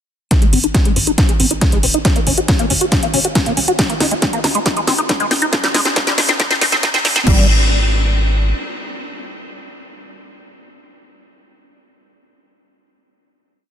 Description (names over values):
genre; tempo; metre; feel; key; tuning
uplifting trance; 138 BPM; 4/4; straight; Ab major; A4 = 438 Hz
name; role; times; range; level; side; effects
liquid acid bass; arpeggios; 0.3-7.5 s; F3 to Gb4; -19 LUFS; left 1 dB; phaser, sidechain pumping, ping-pong delay
electronic kick drum; drums; 0.3-7.4 s; none; -16 LUFS; equal; overdrive
house drum kit; drums; 0.3-7.4 s; crash cymbal, hi-hat, snare drum; -18 LUFS; equal; overdrive
tight sequencer bass; bass; 0.5-8.5 s; Eb1 to Eb2; -19 LUFS; equal; tube saturation, sidechain pumping
room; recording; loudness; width
light reverb, digital ambience; dense, heavily limited modern master, high-pass filter; -13 LUFS; side -9 dB against mid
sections
0.3-7.3 build; 7.3-10.7 final chord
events
build-up 0.3-7.3; drum fill 0.3-7.3; filter sweep on acid bass 0.3-7.3; filter sweep 0.3-7.3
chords
0.3 Ab5; 2.0 Gb5; 3.8 Eb5; 4.7 Ab5; 5.5 N.C.; 6.4 Cm; 7.3 N.C.